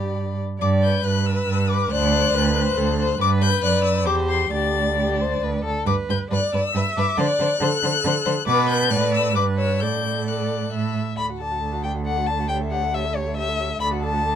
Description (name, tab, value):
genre	quick classical-period movement for string quartet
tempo	136 BPM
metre	3/4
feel	rubato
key	G major, D major from 8.5 s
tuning	A4 = 440 Hz
part	rich violin	melody	0.0-14.4 s	C#5 to A6	-26 LUFS	left 8 dB	none
part	warm violin	second line	0.0-14.4 s	G4 to B5	-26 LUFS	left 4 dB	none
part	rich viola	accompaniment	0.0-14.4 s	F#4 to E5	-27 LUFS	equal	none
part	rich cello	bass	0.0-14.4 s	D2 to D3	-23 LUFS	right 4 dB	none
room	light reverb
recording	dark, warm production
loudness	-19 LUFS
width	side -9 dB against mid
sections	0.6-11.2 A section; 11.2-14.4 B section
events	none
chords	0.0 G; 1.9 D7; 3.2 G; 4.1 C/E; 4.5 Dsus4; 5.9 G; 7.2 D7; 8.5 Bm; 9.4 Em/G; 9.8 D/A; 11.2 D; 12.5 A7/D; 13.8 D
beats	0.15 | 0.60 1.05 1.49 | 1.92 2.35 2.78 | 3.21 3.63 4.06 | 4.53 4.98 5.42 | 5.87 6.32 6.75 | 7.19 7.62 8.05 | 8.48 8.91 9.36 | 9.81 10.27 10.72 | 11.18 11.62 12.06 | 12.50 12.94 13.38 | 13.81 14.25